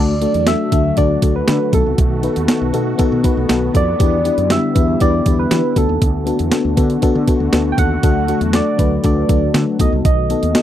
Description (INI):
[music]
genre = 1980s-style pop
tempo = 119 BPM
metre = 4/4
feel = straight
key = unclear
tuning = A4 = 440 Hz
[part]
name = soft struck synth lead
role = melody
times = 0.0-10.6 s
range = A4 to G5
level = -21 LUFS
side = right 2 dB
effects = chorus, phaser
[part]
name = FM electric piano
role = accompaniment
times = 0.0-10.6 s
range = A3 to B4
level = -18 LUFS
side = left 5 dB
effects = chorus
[part]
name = sweeping resonant pad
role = sustained chords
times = 0.3-10.6 s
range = D3 to F#4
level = -24 LUFS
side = right 4 dB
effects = chorus
[part]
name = woody fretless electric bass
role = bass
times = 0.0-10.5 s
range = B1 to E3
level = -20 LUFS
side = right 1 dB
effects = none
[part]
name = clean 12-bit digital drum machine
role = drums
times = 0.2-10.6 s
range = hi-hat, kick drum, snare drum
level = -16 LUFS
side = right 1 dB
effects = none
[sound]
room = little or no reverb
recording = dry, close 1970s-style studio recording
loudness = -13 LUFS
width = side -11 dB against mid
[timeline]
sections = 0.0-10.6 A section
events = none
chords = 0.0 D; 1.7 B7; 4.0 Em7; 5.8 Bm7/D; 8.0 D; 9.8 B7